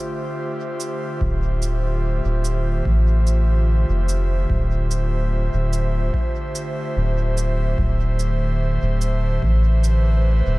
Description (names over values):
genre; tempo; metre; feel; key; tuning
ambient dub; 73 BPM; 4/4; straight; D dorian; A4 = 440 Hz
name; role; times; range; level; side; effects
airy breathy pad; sustained chords; 0.0-10.6 s; D3 to E5; -26 LUFS; equal; chorus
cabasa; drums; 0.8-10.0 s; none; -33 LUFS; right 5 dB; none
soft dub sub bass; bass; 1.2-10.6 s; D1 to A1; -18 LUFS; equal; none
electronic kick drum; drums; 1.2-9.6 s; none; -25 LUFS; equal; none
room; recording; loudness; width
digital ambience; none; -18 LUFS; side -20 dB against mid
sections
0.0-10.6 A section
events
none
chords
0.0 Dm11; 7.8 Amadd9/D